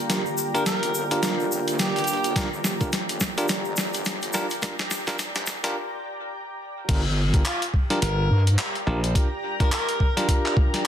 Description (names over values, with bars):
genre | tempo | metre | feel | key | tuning
glitch hop | 106 BPM | 4/4 | swing 59% on 16ths | G minor pentatonic | A4 = 442 Hz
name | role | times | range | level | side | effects
warm analog pad | sustained chords | 0.0-5.7 s | D3 to G4 | -34 LUFS | right 1 dB | chorus, vintage 12-bit sampler grit, sidechain pumping
granular cloud pad | texture | 0.0-10.9 s | G4 to Bb5 | -33 LUFS | equal | built-in reverb, sidechain pumping
bell-like tine electric piano | stabs | 0.1-10.9 s | D4 to Bb4 | -30 LUFS | equal | sidechain pumping, low-pass filter, ping-pong delay
boom bap sampler-style drum kit | drums | 0.1-10.8 s | crash cymbal, handclaps, hi-hat, snare drum | -27 LUFS | equal | soft clipping on snare
egg shaker | percussion | 0.1-5.7 s | none | -34 LUFS | left 3 dB | none
warm tenor saxophone | melody | 0.5-2.6, 7.5-10.9 s | F4 to Bb4 | -31 LUFS | equal | low-pass filter, ping-pong delay
wobble bass | bass | 0.8-8.6 s | G1 to G2 | -27 LUFS | equal | chorus, overdrive, high-pass filter
electronic kick drum | drums | 2.4-10.7 s | none | -22 LUFS | equal | none
glassy slap bass | bass | 8.0-9.1 s | G1 to Bb1 | -23 LUFS | equal | none
room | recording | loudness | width
light reverb, digital ambience | dense, heavily limited modern master, high-pass filter | -22 LUFS | side -10 dB against mid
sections
0.0-6.9 A section; 6.9-10.9 B section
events
build-up 0.0-6.9; drum fill 0.0-5.8; break 5.8-6.9; drop 6.9-10.9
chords
0.0 Gm7